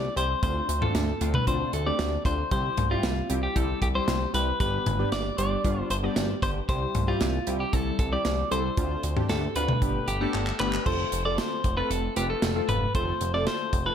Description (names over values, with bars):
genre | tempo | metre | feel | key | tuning
synth-pop | 115 BPM | 4/4 | straight | C major | A4 = 439 Hz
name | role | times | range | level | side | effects
clean electric guitar | melody | 0.0-13.9 s | F4 to D5 | -29 LUFS | left 1 dB | none
chorused synth bass | bass | 0.0-13.9 s | F1 to D2 | -30 LUFS | equal | none
warm analog keys | accompaniment | 0.2-13.9 s | G3 to B4 | -31 LUFS | equal | chorus, phaser
modern studio drum kit | drums | 0.2-13.9 s | crash cymbal, handclaps, hi-hat, kick drum, snare drum, toms | -29 LUFS | equal | none
room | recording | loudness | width
light reverb, studio reverb | none | -24 LUFS | side -8 dB against mid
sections
0.0-10.9 A section; 10.9-13.9 B section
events
drum fill 10.3-10.9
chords
0.4 Dm7; 2.5 C; 4.6 G; 6.7 C; 8.8 Dm7; 9.8 Gadd9; 10.9 F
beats
| 0.43 0.95 1.47 1.99 | 2.51 3.04 3.56 4.08 | 4.60 5.12 5.64 6.17 | 6.69 7.21 7.73 8.25 | 8.77 9.30 9.82 10.34 | 10.86 11.38 11.90 12.43 | 12.95 13.47